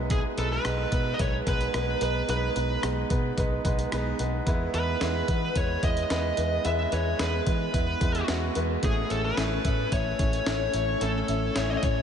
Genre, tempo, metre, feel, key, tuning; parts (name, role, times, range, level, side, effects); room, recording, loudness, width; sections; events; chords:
1980s-style pop; 110 BPM; 4/4; straight; A4 = 440 Hz
warm concert grand piano; accompaniment; 0.0-12.0 s; G#3 to C#5; -30 LUFS; equal
vintage muted fingered electric bass; bass; 0.0-12.0 s; A1 to E3; -30 LUFS; equal
high-gain lead guitar; melody; 0.1-12.0 s; G#4 to E5; -30 LUFS; equal; distortion
breakbeat sampler-style drum kit; drums; 0.1-12.0 s; hi-hat, kick drum, rim click, snare drum; -30 LUFS; equal
moderate cathedral reverb, RT60 5.7 s; dreamy mix soaked in reverb, nothing above 10.9 kHz; -24 LUFS; side -8 dB against mid
0.0-12.0 A section
0.0 G#m/B; 4.5 E; 8.8 A